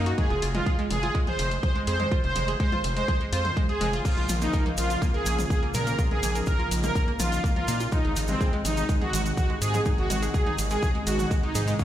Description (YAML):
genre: melodic techno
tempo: 124 BPM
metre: 4/4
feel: straight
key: unclear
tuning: A4 = 440 Hz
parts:
  - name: analog pluck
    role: arpeggios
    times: 0.0-11.8 s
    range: Ab3 to Bb4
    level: -33 LUFS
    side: right 1 dB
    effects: chorus, sidechain pumping, dub echo
  - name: gritty driven synth bass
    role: bass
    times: 0.0-11.7 s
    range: F1 to Bb2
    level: -28 LUFS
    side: equal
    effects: sidechain pumping
  - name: house drum kit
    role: drums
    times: 0.1-11.8 s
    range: crash cymbal, hi-hat, toms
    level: -34 LUFS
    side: left 2 dB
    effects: studio reverb
  - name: soft supersaw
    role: melody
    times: 0.2-11.8 s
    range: C4 to C5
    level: -29 LUFS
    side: right 1 dB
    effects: sidechain pumping, ping-pong delay
  - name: electronic kick drum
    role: drums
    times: 0.2-11.8 s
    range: none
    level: -25 LUFS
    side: equal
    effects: studio reverb
  - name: lush unison pad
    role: sustained chords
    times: 4.1-11.8 s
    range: C3 to Gb4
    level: -35 LUFS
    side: left 1 dB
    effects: chorus, vintage 12-bit sampler grit, sidechain pumping
  - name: tube shaker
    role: percussion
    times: 4.1-11.8 s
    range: none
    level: -37 LUFS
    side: right 4 dB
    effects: none
room: light reverb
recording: played on a big sound system in a bare room, stone room reverb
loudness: -23 LUFS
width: side -12 dB against mid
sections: 0.0-11.8 A section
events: none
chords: 0.2 Fm; 4.1 Bbm; 7.9 Ab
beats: | 0.18 0.66 1.15 1.63 | 2.12 2.60 3.08 3.57 | 4.05 4.54 5.02 5.50 | 5.99 6.47 6.95 7.44 | 7.92 8.41 8.89 9.37 | 9.86 10.34 10.82 11.31 | 11.79